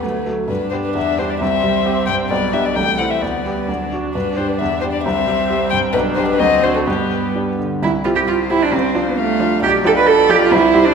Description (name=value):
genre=quick classical-period movement for piano quartet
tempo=132 BPM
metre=2/4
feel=rubato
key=G major, C major from 7.8 s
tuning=A4 = 440 Hz
part: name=dark violin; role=melody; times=0.0-10.9 s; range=G4 to G5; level=-20 LUFS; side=left 7 dB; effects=none
part: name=warm cello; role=second line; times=0.0-10.9 s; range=E3 to B4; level=-18 LUFS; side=right 5 dB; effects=none
part: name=clear grand piano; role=accompaniment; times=0.0-10.9 s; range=B1 to A4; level=-20 LUFS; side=right 1 dB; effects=none
part: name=warm viola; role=accompaniment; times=0.0-10.9 s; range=F3 to D4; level=-24 LUFS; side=equal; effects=none
room=wet scoring stage reverb, RT60 1.6 s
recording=minimal, uncompressed stereo recording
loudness=-14 LUFS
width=side -6 dB against mid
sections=0.5-7.8 A section; 7.8-10.9 B section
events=none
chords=0.0 D; 0.5 G; 1.0 Em7; 1.4 C; 2.3 G/B; 2.8 Am/C; 3.2 G/D; 3.7 D; 4.1 G; 4.6 Em7; 5.0 C; 5.9 G/B; 6.4 D7b9; 6.9 G; 7.8 C; 8.7 Dm7/C; 9.6 G7/B